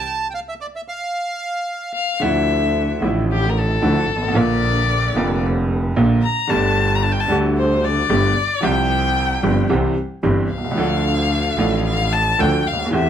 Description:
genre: tango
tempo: 112 BPM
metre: 4/4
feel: rubato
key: unclear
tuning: A4 = 440 Hz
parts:
  - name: bandoneon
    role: melody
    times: 0.0-1.9 s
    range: D5 to A5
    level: -24 LUFS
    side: right 2 dB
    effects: none
  - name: warm violin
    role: second line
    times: 0.0-13.1 s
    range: G4 to Bb5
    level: -21 LUFS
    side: left 4 dB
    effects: none
  - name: clear upright piano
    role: accompaniment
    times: 2.2-13.1 s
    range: F1 to A4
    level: -20 LUFS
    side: right 2 dB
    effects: none
  - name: clear double bass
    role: bass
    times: 2.2-13.1 s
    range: F1 to E2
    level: -21 LUFS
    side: equal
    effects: none
room: moderate studio reverb, RT60 0.7 s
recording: none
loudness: -16 LUFS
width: side -9 dB against mid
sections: 0.0-2.2 A section; 2.2-13.1 B section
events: stop 0.1-2.2; violin solo 2.2-13.1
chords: 0.1 N.C.; 2.2 Dmadd9; 4.4 Bb; 6.5 Gsus2; 8.6 Csus4; 9.7 C; 10.8 Dm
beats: | 0.05 0.59 1.14 1.68 | 2.22 2.76 3.30 3.83 | 4.37 4.90 5.44 5.97 | 6.51 7.04 7.57 8.10 | 8.64 9.17 9.71 10.25 | 10.79 11.32 11.86 12.39 | 12.93

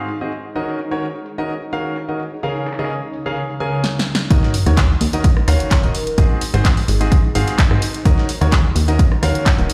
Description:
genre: piano house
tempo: 128 BPM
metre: 4/4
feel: straight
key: Eb dorian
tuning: A4 = 442 Hz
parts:
  - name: clear concert grand piano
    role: riff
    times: 0.0-9.7 s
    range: Ab2 to Ab5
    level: -25 LUFS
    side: equal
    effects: sidechain pumping, digital delay
  - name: granular cloud pad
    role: texture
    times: 0.0-9.7 s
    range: Db3 to Db5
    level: -33 LUFS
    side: equal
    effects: built-in reverb, sidechain pumping
  - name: breakbeat sampler-style drum kit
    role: drums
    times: 0.1-9.7 s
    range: hi-hat, snare drum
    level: -35 LUFS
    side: equal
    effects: sidechain pumping on hats, high-pass filter on hats, low-pass filter on hats, high-pass filter on snare, low-pass filter on snare
  - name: punchy analog drum machine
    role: drums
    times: 3.8-9.7 s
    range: handclaps, hi-hat, rim click, snare drum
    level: -26 LUFS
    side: equal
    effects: none
  - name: plucky analog bass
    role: bass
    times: 4.3-9.7 s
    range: Eb1 to Ab2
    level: -19 LUFS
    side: equal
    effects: sidechain pumping
  - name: electronic kick drum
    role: drums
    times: 4.3-9.6 s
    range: none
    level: -17 LUFS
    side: equal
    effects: none
  - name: sub drop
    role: sound effects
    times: 4.4-6.2 s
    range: none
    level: -26 LUFS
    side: equal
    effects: none
  - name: vibraphone with soft mallets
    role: melody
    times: 5.5-9.7 s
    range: Ab4 to Gb5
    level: -29 LUFS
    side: equal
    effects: none
room: light reverb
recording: played on a big sound system in a bare room, stone room reverb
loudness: -18 LUFS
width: mono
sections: 0.0-4.3 A section; 4.3-9.7 B section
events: drum fill 3.8-4.3; drop 4.3-9.7; impact 4.3-6.2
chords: 0.3 Ebm7; 2.4 Bbm7/Db; 4.3 Ebm7; 5.9 Ab7; 7.8 Ebm7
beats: 0.09 | 0.56 1.02 1.49 1.96 | 2.43 2.90 3.37 3.84 | 4.31 4.77 5.24 5.71 | 6.18 6.65 7.12 7.59 | 8.06 8.52 8.99 9.46

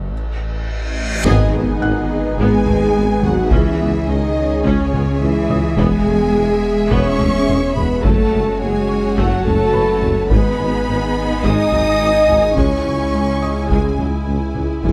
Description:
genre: cinematic, hybrid orchestral and electronic film score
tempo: 106 BPM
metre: 4/4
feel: straight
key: G# phrygian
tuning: A4 = 440 Hz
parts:
  - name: phased detuned saw bass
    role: bass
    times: 0.0-14.9 s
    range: E1 to C#2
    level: -26 LUFS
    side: equal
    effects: phaser
  - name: reverse cymbal and impact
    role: sound effects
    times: 0.2-3.5 s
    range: none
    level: -29 LUFS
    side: equal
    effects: none
  - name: rich studio violin section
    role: melody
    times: 1.2-14.9 s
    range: C#5 to G#5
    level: -34 LUFS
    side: equal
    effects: none
  - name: warm symphonic violin section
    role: second line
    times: 1.2-14.9 s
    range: C#5 to D#6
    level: -30 LUFS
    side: equal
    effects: none
  - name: hollow soft pad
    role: sustained chords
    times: 1.2-14.9 s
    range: G#3 to F#5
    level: -27 LUFS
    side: equal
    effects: ensemble chorus
  - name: warm French horn section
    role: sustained chords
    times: 1.2-14.9 s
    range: C#4 to D#5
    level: -22 LUFS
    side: equal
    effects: none
  - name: mellow tuba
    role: bass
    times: 1.2-14.9 s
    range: E1 to C#2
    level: -26 LUFS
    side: equal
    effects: none
  - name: taiko ensemble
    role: drums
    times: 1.2-14.9 s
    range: none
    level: -24 LUFS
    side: equal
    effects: none
  - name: rich symphonic viola section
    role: accompaniment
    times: 1.3-14.9 s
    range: D#3 to G#4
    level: -28 LUFS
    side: equal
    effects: none
  - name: rich studio double bass section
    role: bass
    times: 1.3-14.9 s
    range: E1 to E2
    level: -26 LUFS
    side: equal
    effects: none
  - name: rich symphonic cello section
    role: bass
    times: 1.3-14.9 s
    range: C#3 to D#4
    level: -25 LUFS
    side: equal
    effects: none
  - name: felt-muted upright piano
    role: texture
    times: 1.8-14.9 s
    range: G#4 to F#6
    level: -34 LUFS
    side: equal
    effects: tape echo
room: light reverb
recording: close, detailed microphones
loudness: -16 LUFS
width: mono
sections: 0.0-1.2 A section; 1.2-14.9 B section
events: break 0.0-1.2; reverse cymbal 0.2-1.2; drum fill 0.4-1.2; band accent 1.2-1.8; impact 1.2-3.5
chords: 0.0 N.C.; 1.2 G#m; 3.5 C#m; 5.8 E; 8.0 F#m; 10.3 G#m; 12.6 C#m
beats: 0.12 0.68 | 1.25 1.81 2.38 2.95 | 3.51 4.08 4.64 5.21 | 5.78 6.34 6.91 7.48 | 8.04 8.61 9.17 9.74 | 10.31 10.87 11.44 12.00 | 12.57 13.14 13.70 14.27 | 14.83

